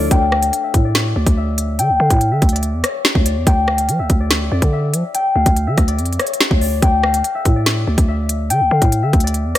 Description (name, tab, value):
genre	hip hop, drill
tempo	143 BPM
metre	4/4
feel	half-time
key	D harmonic minor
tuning	A4 = 438 Hz
part	concert harp	melody	0.0-9.6 s	C#5 to G5	-19 LUFS	left 3 dB	low-pass filter
part	growling 808-style bass	bass	0.0-9.5 s	D2 to F3	-18 LUFS	equal	none
part	drill drum kit	drums	0.1-9.6 s	hi-hat, kick drum, rim click, snare drum	-16 LUFS	equal	none
room	digital ambience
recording	none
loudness	-14 LUFS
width	side -13 dB against mid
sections	0.1-9.6 A section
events	filter sweep on harp 0.1-9.6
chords	0.1 Dsus2; 3.5 Dmadd9; 6.8 Dsus2